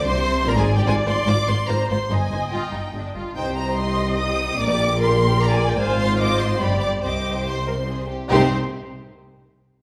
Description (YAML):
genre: quick classical-period movement for string orchestra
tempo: 136-152 BPM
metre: 3/4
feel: rubato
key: C minor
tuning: A4 = 440 Hz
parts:
  - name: dark chamber violin section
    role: melody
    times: 0.0-8.6 s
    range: G5 to Eb6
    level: -29 LUFS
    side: equal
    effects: none
  - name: warm studio violin section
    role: second line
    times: 0.0-8.5 s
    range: D4 to F5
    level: -30 LUFS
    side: equal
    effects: none
  - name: warm studio viola section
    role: accompaniment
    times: 0.0-8.6 s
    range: C4 to Eb5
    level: -28 LUFS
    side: equal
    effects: none
  - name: dark chamber cello section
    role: bass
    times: 0.0-8.6 s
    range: G2 to C3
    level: -27 LUFS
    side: equal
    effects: none
  - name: rich chamber double bass section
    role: bass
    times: 0.0-8.5 s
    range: G1 to C2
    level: -27 LUFS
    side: equal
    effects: none
room: wet recital hall reverb, RT60 1.5 s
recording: recorded in a church or concert hall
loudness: -21 LUFS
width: mono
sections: 0.0-8.3 A section; 8.3-9.6 B section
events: none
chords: 0.0 Gm (rootless); 0.9 Fm/Ab; 2.1 Cm/G (rootless); 3.4 Cm; 4.6 Gm/Bb; 5.8 Fm/Ab; 6.6 G; 7.0 Cm